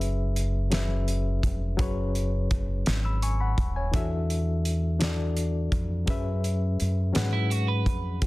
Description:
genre	slow six-eight R&B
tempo	56 BPM (dotted quarters)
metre	6/8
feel	straight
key	F# minor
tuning	A4 = 440 Hz
part	bright reed electric piano	accompaniment	0.0-8.3 s	E3 to E6	-32 LUFS	left 3 dB	fast tremolo
part	deep dub fingered electric bass	bass	0.0-8.3 s	D#1 to G#2	-26 LUFS	equal	none
part	cloth-damped thuddy drum kit	drums	0.0-8.3 s	hi-hat, kick drum, snare drum	-28 LUFS	equal	none
part	electric guitar at the edge of break-up	second line	7.3-8.2 s	E4 to B4	-32 LUFS	right 9 dB	lush chorus
room	little or no reverb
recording	dense, heavily limited modern master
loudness	-24 LUFS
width	side -19 dB against mid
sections	0.0-8.2 A section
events	none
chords	0.0 F#9sus4; 3.9 E9sus4; 6.1 F#9sus4

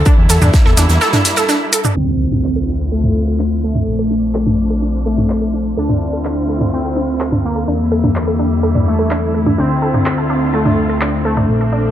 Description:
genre	melodic techno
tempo	126 BPM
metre	4/4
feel	straight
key	D minor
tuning	A4 = 440 Hz
part	dark chamber string section	sustained chords	0.0-11.9 s	D3 to F4	-24 LUFS	right 1 dB	vintage 12-bit sampler grit, sidechain pumping, low-pass filter
part	fat analog bass	bass	0.0-11.9 s	Bb1 to E2	-18 LUFS	equal	sidechain pumping
part	wide unison pluck	arpeggios	0.1-11.8 s	D4 to A4	-21 LUFS	right 1 dB	sidechain pumping, tape echo
part	electronic kick drum	drums	0.1-0.6 s	none	-10 LUFS	equal	none
part	modern studio drum kit	drums	0.1-2.0 s	hi-hat, snare drum	-23 LUFS	right 3 dB	sidechain pumping on hats, high-pass filter on hats, high-pass filter on snare, high-pass filter on room
part	punchy analog drum machine	drums	0.1-11.5 s	handclaps, hi-hat, shaker, toms	-18 LUFS	equal	overdrive, low-pass filter on perc, low-pass filter on hats, low-pass filter on toms, low-pass filter on snare
part	resonant sweep polysynth	melody	2.0-11.9 s	A3 to D4	-18 LUFS	left 1 dB	chorus, cassette tape, sidechain pumping
part	bowed-like drone	drone	4.2-11.9 s	D3 to C4	-28 LUFS	left 1 dB	none
part	impact	sound effects	2.0-3.9 s	none	-23 LUFS	equal	none
room	light reverb, digital ambience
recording	low-pass filter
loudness	-13 LUFS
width	side -11 dB against mid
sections	0.0-2.0 A section; 2.0-11.9 B section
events	break 1.0-2.0; impact 2.0-3.9; filter sweep on drum 2.0-11.9; filter sweep on synth arpeggio sound 2.0-11.9; filter sweep on analog polysynth 2.0-11.9; filter sweep on string section 2.0-11.9; filter sweep 2.0-11.9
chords	0.1 Edim; 2.0 Dm7; 3.9 Bb; 5.8 Dm7; 7.7 Edim; 9.6 Dm7

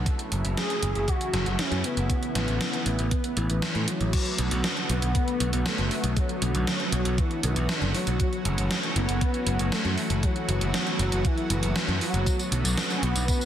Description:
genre	synthwave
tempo	118 BPM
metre	4/4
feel	straight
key	B minor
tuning	A4 = 438 Hz
part	lush unison pad	sustained chords	0.0-13.5 s	C#3 to F#4	-32 LUFS	right 1 dB	chorus, sidechain pumping
part	modern bright picked electric bass	bass	0.0-13.3 s	F#1 to A2	-27 LUFS	equal	none
part	electronic kick drum	drums	0.1-13.4 s	none	-26 LUFS	equal	none
part	gated 80s digital drum machine	drums	0.1-13.5 s	crash cymbal, hi-hat, snare drum, tambourine	-30 LUFS	right 1 dB	gated reverb, gated reverb snare, overdrive
part	expressive synth lead	melody	0.6-13.5 s	E3 to G#4	-30 LUFS	left 1 dB	ensemble chorus, tape echo
room	light reverb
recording	dense, heavily limited modern master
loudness	-23 LUFS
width	side -10 dB against mid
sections	0.0-4.1 A section; 4.1-13.5 B section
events	none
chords	0.1 F#m7; 2.1 Aadd9; 4.1 Bm7; 8.2 F#m7; 12.3 Bm7

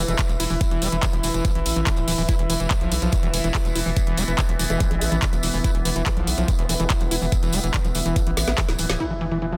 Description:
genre	psychedelic trance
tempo	143 BPM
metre	4/4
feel	straight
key	unclear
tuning	A4 = 443 Hz
part	vowel-sweep wobble bass	second line	0.0-0.2, 3.1-6.9 s	G#3 to B3	-40 LUFS	equal	none
part	overtone-sweeping drone	sustained chords	0.0-9.6 s	E3 to E4	-33 LUFS	equal	chorus, built-in reverb, sidechain pumping
part	screaming distorted acid line	riff	0.0-9.6 s	D3 to E4	-30 LUFS	equal	distortion, chorus, sidechain pumping, digital delay
part	round analog bass	bass	0.0-9.0 s	D1 to B1	-28 LUFS	equal	none
part	warbly tape-like pad	texture	0.0-9.6 s	E4 to E6	-34 LUFS	equal	chorus, built-in reverb, sidechain pumping
part	garage drum kit	drums	0.1-9.6 s	handclaps, hi-hat, snare drum	-30 LUFS	equal	low-pass filter on hats, low-pass filter on cymbals, low-pass filter on snare, low-pass filter on room
part	tambourine	percussion	0.1-9.0 s	none	-35 LUFS	equal	none
part	electronic kick drum	drums	0.2-8.7 s	none	-24 LUFS	equal	none
part	impact	sound effects	9.0-9.6 s	none	-33 LUFS	equal	none
room	little or no reverb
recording	dense, heavily limited modern master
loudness	-22 LUFS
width	mono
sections	0.0-9.0 A section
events	drum fill 8.4-9.0; band accent 8.9; impact 9.0-9.6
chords	0.0 E5

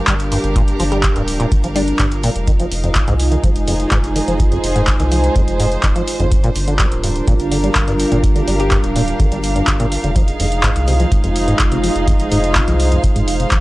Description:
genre	acid house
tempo	125 BPM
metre	4/4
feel	straight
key	G phrygian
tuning	A4 = 440 Hz
part	dark analog pad	sustained chords	0.0-13.6 s	G3 to Bb4	-23 LUFS	right 1 dB	chorus, phaser, sidechain pumping
part	dark chamber string section	texture	0.0-13.6 s	D4 to F5	-22 LUFS	right 1 dB	sidechain pumping
part	deep acid bass	riff	0.1-13.6 s	F2 to G3	-22 LUFS	equal	lush chorus, sidechain pumping, analog delay
part	round analog bass	bass	0.1-13.6 s	D1 to C2	-20 LUFS	equal	sidechain pumping
part	booming analog drum machine	drums	0.1-13.6 s	handclaps, hi-hat	-21 LUFS	equal	none
part	electronic kick drum	drums	0.1-13.6 s	none	-16 LUFS	equal	none
part	glassy wavetable pluck	melody	0.9-2.2, 8.6-8.8 s	D4 to G4	-24 LUFS	left 1 dB	chorus, analog delay
room	light reverb, digital ambience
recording	dry, gritty hardware recording, transformer saturation, cassette tape, lossy compression artefacts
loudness	-13 LUFS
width	side -18 dB against mid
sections	0.0-13.6 A section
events	none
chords	0.0 Gm7; 2.5 Fm7; 6.3 Gm7; 10.2 Fm7

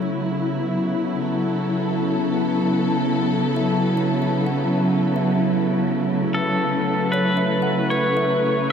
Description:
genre	ambient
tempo	76 BPM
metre	4/4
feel	straight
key	F# minor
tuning	A4 = 440 Hz
part	warm studio string section	sustained chords	0.0-8.7 s	C#3 to B4	-20 LUFS	equal	none
part	kalimba	arpeggios	0.0-8.7 s	B4 to F#5	-32 LUFS	equal	analog delay
part	organ-like drone	drone	0.0-8.7 s	F#3	-27 LUFS	right 1 dB	ensemble chorus, built-in reverb
part	pedal steel guitar	melody	6.3-8.7 s	A4 to C#5	-23 LUFS	left 1 dB	analog delay
room	wet huge ambient reverb, RT60 8.4 s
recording	dreamy mix soaked in reverb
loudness	-19 LUFS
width	side -7 dB against mid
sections	0.0-8.7 A section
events	fade-in on kalimba 0.0-8.7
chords	0.0 F#m

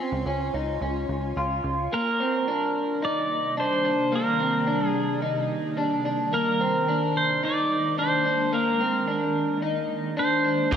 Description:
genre	dream pop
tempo	109 BPM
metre	4/4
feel	straight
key	unclear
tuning	A4 = 438 Hz
part	ethereal airy pad	sustained chords	0.0-10.8 s	C3 to C6	-31 LUFS	right 1 dB	ensemble chorus, built-in reverb, phaser
part	electric guitar through a small old amp	arpeggios	0.0-10.8 s	Bb3 to F4	-26 LUFS	left 1 dB	analog chorus, digital delay
part	plucky analog bass	bass	0.1-1.9, 10.7-10.8 s	C2 to Db2	-30 LUFS	equal	none
part	pedal steel guitar	melody	1.9-10.8 s	Bb4 to D5	-25 LUFS	right 2 dB	wide subtle chorus, digital delay
part	overdriven electric guitar	accompaniment	10.7-10.8 s	C3 to Bb3	-28 LUFS	right 6 dB	tremolo, ensemble chorus
part	soft-mallet drum kit	drums	10.7-10.8 s	kick drum, ride cymbal	-23 LUFS	equal	none
room	wet lush hall reverb, RT60 1.9 s, small room ambience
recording	bright 1980s-style digital production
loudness	-22 LUFS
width	side -8 dB against mid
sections	0.0-1.9 A section; 1.9-10.8 B section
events	none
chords	0.0 Dbmaj7; 1.9 Cm7; 6.3 Bb7sus4

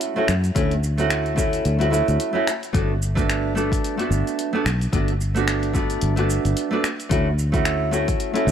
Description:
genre	sunset chillout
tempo	110 BPM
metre	4/4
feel	swing 57% on 16ths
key	G lydian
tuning	A4 = 439 Hz
part	nylon-string guitar	accompaniment	0.0-8.5 s	A3 to F#4	-22 LUFS	moving between left 3 dB and right 4 dB	auto-pan, analog delay
part	deep house drum kit	drums	0.0-8.5 s	finger snaps, hi-hat, shaker	-28 LUFS	equal	none
part	fingered electric bass	bass	0.3-8.5 s	G1 to F#2	-22 LUFS	equal	none
part	electronic kick drum	drums	0.6-8.2 s	none	-24 LUFS	equal	none
room	little or no reverb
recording	dry, gritty hardware recording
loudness	-19 LUFS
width	side -9 dB against mid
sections	0.0-8.5 A section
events	none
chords	0.0 Dmaj9; 2.7 Gmaj9; 7.1 Dmaj9

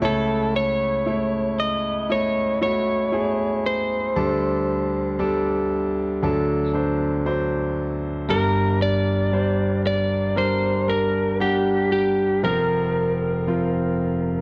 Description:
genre	pop ballad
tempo	58 BPM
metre	4/4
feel	straight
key	unclear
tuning	A4 = 435 Hz
part	lightly driven lead guitar	melody	0.0-14.4 s	G4 to Eb5	-26 LUFS	equal	none
part	clear concert grand piano	accompaniment	0.0-14.4 s	F1 to F#5	-24 LUFS	equal	none
room	wet echo chamber reverb, RT60 1.3 s, small room ambience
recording	dark, warm production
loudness	-22 LUFS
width	mono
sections	0.0-14.4 A section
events	none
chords	0.0 A/C#; 4.2 Dsus4; 6.2 D; 8.3 Gm; 12.4 Fsus4

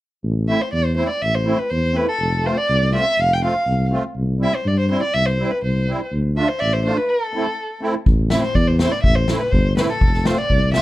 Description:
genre	klezmer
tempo	122 BPM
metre	2/4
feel	straight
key	A minor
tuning	A4 = 440 Hz
part	breathy tuba	bass	0.2-10.8 s	F1 to G2	-20 LUFS	equal	none
part	dark violin	melody	0.5-10.8 s	A4 to G5	-21 LUFS	equal	none
part	musette accordion	accompaniment	0.5-10.8 s	G3 to F4	-23 LUFS	right 1 dB	none
part	street-band drum kit	drums	8.1-10.8 s	kick drum, snare drum	-19 LUFS	left 1 dB	none
room	light reverb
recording	dark, warm production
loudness	-17 LUFS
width	side -16 dB against mid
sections	0.2-8.1 A section; 8.1-10.8 A section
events	break 7.1-8.1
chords	0.2 Am; 2.2 F; 4.2 C; 6.1 Dm; 7.1 Am; 10.0 F

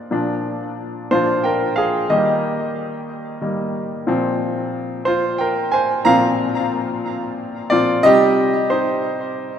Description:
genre	pop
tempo	61 BPM (dotted quarters)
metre	6/8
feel	straight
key	unclear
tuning	A4 = 440 Hz
part	bright concert grand piano	solo	0.0-9.6 s	Bb2 to Bb5	-17 LUFS	equal	ping-pong delay
room	wet lush hall reverb, RT60 2.5 s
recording	rough home demo mix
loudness	-16 LUFS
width	side -8 dB against mid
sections	0.1-8.0 A section; 8.0-9.6 B section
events	grand piano solo 0.1-8.0, 8.0-9.6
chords	0.1 Bb; 2.1 Eb; 4.1 Bbsus2; 8.0 Cm

